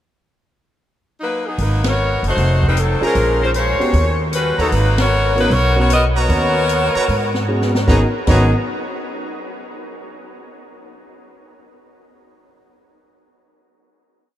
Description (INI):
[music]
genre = jazz, big band swing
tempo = 152 BPM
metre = 4/4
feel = swing 66% on 8ths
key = G# minor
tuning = A4 = 440 Hz
[part]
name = edgy saxophone section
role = melody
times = 1.2-8.5 s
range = F#3 to D#5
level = -19 LUFS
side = left 1 dB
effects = none
[part]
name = upright bass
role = bass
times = 1.6-8.5 s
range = F1 to G#2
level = -18 LUFS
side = equal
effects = none
[part]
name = open jazz drum kit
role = drums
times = 1.6-8.4 s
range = crash cymbal, hi-hat, kick drum, ride cymbal, rim click, snare drum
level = -23 LUFS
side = equal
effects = none
[part]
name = warm concert grand piano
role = accompaniment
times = 3.0-8.5 s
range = B3 to C5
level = -24 LUFS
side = right 1 dB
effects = none
[part]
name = clear trumpet section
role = stabs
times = 3.0-8.5 s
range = B3 to A#5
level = -26 LUFS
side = right 2 dB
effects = none
[sound]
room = moderate huge ambient reverb, RT60 8.4 s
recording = in a vast, echoing space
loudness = -14 LUFS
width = side -12 dB against mid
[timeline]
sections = 0.0-1.6 pickup bar; 1.6-7.9 A section; 7.9-9.5 final chord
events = band accent 1.8, 4.9; drum fill 7.5-7.9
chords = 0.0 F#5; 1.6 G#m11; 2.4 F7b9; 3.1 A#m9; 3.9 D#7alt; 4.7 G#m11